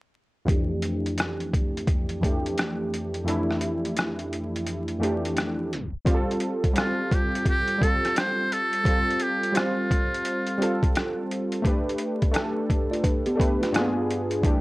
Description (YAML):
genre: lo-fi hip hop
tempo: 86 BPM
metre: 4/4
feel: swing 65% on 16ths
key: F major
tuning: A4 = 444 Hz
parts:
  - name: warm analog keys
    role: accompaniment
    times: 0.5-14.6 s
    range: C2 to C5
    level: -26 LUFS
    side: equal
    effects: chorus, cassette tape, low-pass filter
  - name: trip hop sampler-style drum kit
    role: drums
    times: 0.5-14.6 s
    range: hi-hat, kick drum, rim click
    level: -25 LUFS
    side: equal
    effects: overdrive
  - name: trumpet with metal mute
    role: melody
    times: 6.8-11.0 s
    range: F4 to C5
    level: -26 LUFS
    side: equal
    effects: none
  - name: tine electric piano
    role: second line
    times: 12.9-13.9 s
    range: A3 to D5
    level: -28 LUFS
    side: equal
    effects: analog delay
room: light reverb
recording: dry, gritty hardware recording, vinyl crackle, tape stop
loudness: -23 LUFS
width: side -20 dB against mid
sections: 0.5-6.1 A section; 6.1-14.6 B section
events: filter sweep on synth keys 0.5-6.1; kick muted 3.3-6.1; tape stop 5.7-6.1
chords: 0.5 Fmaj9; 6.1 Fadd9; 11.6 Gadd9; 13.7 G7b9